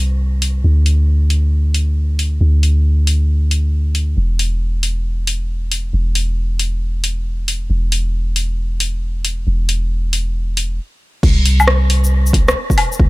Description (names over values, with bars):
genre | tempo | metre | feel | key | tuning
future garage | 136 BPM | 4/4 | swing 66% on 16ths | unclear | A4 = 440 Hz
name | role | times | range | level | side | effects
soft 808-style bass | bass | 0.0-13.1 s | E1 to D2 | -15 LUFS | equal | sidechain pumping
deep house drum kit | drums | 0.4-13.0 s | crash cymbal, hi-hat, rim click, shaker, woodblock | -18 LUFS | left 1 dB | none
electronic kick drum | drums | 11.2-13.1 s | none | -13 LUFS | equal | none
room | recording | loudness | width
little or no reverb | none | -14 LUFS | side -21 dB against mid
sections
0.0-11.2 A section; 11.2-13.1 B section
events
stop 10.8-11.2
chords
none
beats
0.20 | 0.64 1.08 1.52 1.97 | 2.41 2.85 3.29 3.73 | 4.17 4.61 5.05 5.50 | 5.94 6.38 6.82 7.26 | 7.70 8.14 8.58 9.03 | 9.47 9.91 10.35 10.79 | 11.23 11.67 12.11 12.55 | 13.00